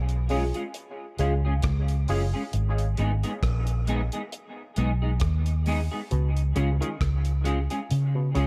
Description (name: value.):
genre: dub reggae.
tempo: 67 BPM.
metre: 4/4.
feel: swing 56% on 16ths.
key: unclear.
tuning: A4 = 440 Hz.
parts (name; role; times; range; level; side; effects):
vintage muted fingered electric bass; bass; 0.0-8.5 s; F#1 to C#3; -26 LUFS; equal; none.
damped 70s drum kit; drums; 0.1-8.5 s; hi-hat, kick drum, rim click; -35 LUFS; equal; none.
semi-hollow electric guitar; accompaniment; 0.3-8.5 s; G#3 to G#4; -34 LUFS; equal; analog chorus, dub echo.
filtered dub chord stab; stabs; 0.3-2.2 s; G#3 to G#4; -37 LUFS; equal; phaser, dub echo.
muted clav; arpeggios; 6.1-8.5 s; B2 to D#3; -40 LUFS; equal; auto-wah, dub echo.
room: small room ambience.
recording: echo-heavy mix.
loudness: -26 LUFS.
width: mono.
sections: 0.0-8.5 A section.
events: break 0.0-6.1.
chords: 0.0 C#; 2.5 G#m; 6.1 C#.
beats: 0.74 1.64 | 2.54 3.43 4.33 5.22 | 6.12 7.01 7.91.